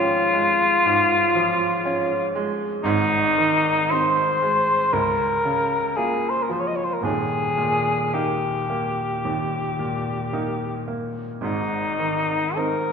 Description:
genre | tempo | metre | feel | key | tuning
classical, romantic duo for cor anglais and grand piano | 51-61 BPM | 4/4 | rubato | Ab major | A4 = 440 Hz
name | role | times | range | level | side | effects
mellow cor anglais | melody | 0.0-12.9 s | Eb4 to Eb5 | -21 LUFS | left 2 dB | none
bright baby grand piano | accompaniment | 0.0-12.9 s | Eb1 to F4 | -25 LUFS | right 2 dB | none
room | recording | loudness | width
wet concert hall reverb, RT60 2.2 s | recorded in a church or concert hall | -19 LUFS | side -6 dB against mid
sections
0.0-12.9 A section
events
none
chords
0.0 Db/Ab; 2.8 Ab; 4.9 Bbm/Db; 7.0 Eb; 11.4 Ab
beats
0.84 1.84 | 2.83 3.90 4.93 5.97 | 7.03 8.14 9.26 10.34 | 11.42 12.56

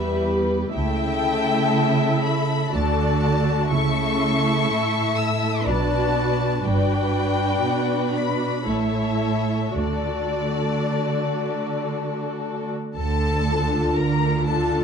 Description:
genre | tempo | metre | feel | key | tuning
classical, slow romantic movement for string orchestra | 55-62 BPM | 3/4 | rubato | D major | A4 = 440 Hz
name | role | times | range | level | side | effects
rich studio violin section | melody | 0.0-14.8 s | D5 to E6 | -28 LUFS | left 4 dB | none
rich studio violin section | second line | 0.0-14.8 s | A4 to E5 | -26 LUFS | left 6 dB | none
rich studio viola section | accompaniment | 0.0-14.8 s | G3 to G4 | -26 LUFS | right 2 dB | none
rich studio cello section | bass | 0.0-14.8 s | E2 to D3 | -25 LUFS | right 3 dB | none
warm studio double bass section | bass | 0.8-14.8 s | G1 to D2 | -27 LUFS | right 2 dB | none
room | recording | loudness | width
moderate large studio reverb, RT60 1.2 s | dark, warm production | -20 LUFS | side -6 dB against mid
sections
0.0-13.0 A section; 13.0-14.8 B section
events
none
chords
0.0 Em; 0.7 A7/C#; 2.7 D; 3.7 A/C#; 5.7 Bm7; 6.6 Gmaj7; 8.7 A; 9.8 D; 13.0 Dm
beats
| 0.75 1.73 2.73 | 3.71 4.68 5.66 | 6.64 7.64 8.68 | 9.76 10.83 11.90 | 12.96 13.98

